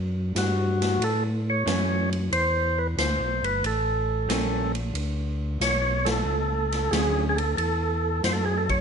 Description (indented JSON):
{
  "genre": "soul jazz organ trio",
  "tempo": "91 BPM",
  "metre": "4/4",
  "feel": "swing 69% on 8ths",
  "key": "D major",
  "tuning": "A4 = 439 Hz",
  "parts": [
    { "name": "tonewheel organ", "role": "bass", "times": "0.0-8.8 s", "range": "G1 to A2", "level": "-27 LUFS", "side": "left 1 dB", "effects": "chorus vibrato, slow rotary speaker" },
    { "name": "percussive tonewheel organ", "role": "melody", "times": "0.4-8.8 s", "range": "F#4 to C#5", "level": "-25 LUFS", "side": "right 1 dB", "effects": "slow rotary speaker" },
    { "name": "swinging big-band drum kit", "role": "drums", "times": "0.4-8.8 s", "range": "hi-hat, kick drum, ride cymbal, snare drum", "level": "-31 LUFS", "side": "equal", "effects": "none" },
    { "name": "vintage hollow-body jazz guitar", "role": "accompaniment", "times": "1.7-7.3 s", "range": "D3 to C#4", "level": "-30 LUFS", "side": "right 3 dB", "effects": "none" }
  ],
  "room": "light reverb",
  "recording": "nothing above 10.6 kHz",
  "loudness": "-22 LUFS",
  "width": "side -6 dB against mid",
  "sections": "0.0-8.8 A section",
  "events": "band accent 5.9-6.3",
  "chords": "0.0 F#m7; 2.3 Em7; 3.6 A7b9; 5.0 Dmaj7; 7.6 A5",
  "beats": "0.35 1.01 1.66 | 2.32 2.98 3.64 4.29 | 4.95 5.61 6.27 6.92 | 7.58 8.24"
}